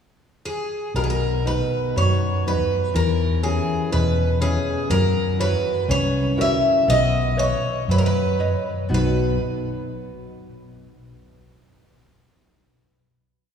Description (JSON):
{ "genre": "fado-style ballad", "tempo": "60 BPM", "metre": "2/4", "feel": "rubato", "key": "B major", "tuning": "A4 = 442 Hz", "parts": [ { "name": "picked twelve-string acoustic guitar", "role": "melody", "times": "0.5-9.4 s", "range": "G#4 to E5", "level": "-23 LUFS", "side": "equal", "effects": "none" }, { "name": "fretless electric bass", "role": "bass", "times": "0.9-9.4 s", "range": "B1 to F#2", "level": "-22 LUFS", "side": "equal", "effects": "none" }, { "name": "nylon-string guitar", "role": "accompaniment", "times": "1.0-9.4 s", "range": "B2 to D#5", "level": "-26 LUFS", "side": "equal", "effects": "none" } ], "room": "wet church reverb, RT60 3.4 s", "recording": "recorded in a church or concert hall, small room ambience", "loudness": "-19 LUFS", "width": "side -7 dB against mid", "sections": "0.0-1.0 pickup bar; 1.0-8.9 A section; 8.9-10.9 final chord", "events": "none", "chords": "0.0 N.C.; 1.0 B; 3.0 E6; 4.9 F#7; 6.9 Badd9; 8.9 B" }